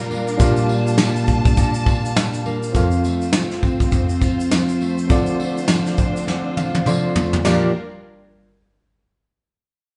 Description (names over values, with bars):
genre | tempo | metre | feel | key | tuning
acoustic pop | 102 BPM | 4/4 | swing 60% on 16ths | Bb major | A4 = 440 Hz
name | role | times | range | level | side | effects
fingerpicked steel-string acoustic guitar | accompaniment | 0.0-7.7 s | F2 to G4 | -23 LUFS | equal | none
overdriven reed electric piano | accompaniment | 0.0-7.7 s | Bb3 to C6 | -28 LUFS | equal | fast tremolo
warm studio string section | sustained chords | 0.0-7.7 s | G3 to A5 | -30 LUFS | equal | none
tambourine | percussion | 0.1-7.7 s | none | -40 LUFS | equal | none
soft brush drum kit | drums | 0.3-7.6 s | china cymbal, kick drum, shaker, snare drum, toms | -22 LUFS | equal | none
room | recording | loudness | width
moderate stone room reverb, RT60 1.0 s | band playing live in one room, nothing above 10.4 kHz | -19 LUFS | mono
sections
0.0-2.7 A section; 2.7-7.5 B section; 7.5-9.8 C section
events
drum fill 6.3-7.5; reed electric piano fill 6.3-7.5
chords
0.0 Bb6; 2.7 F; 5.1 Dm7; 7.5 Bb6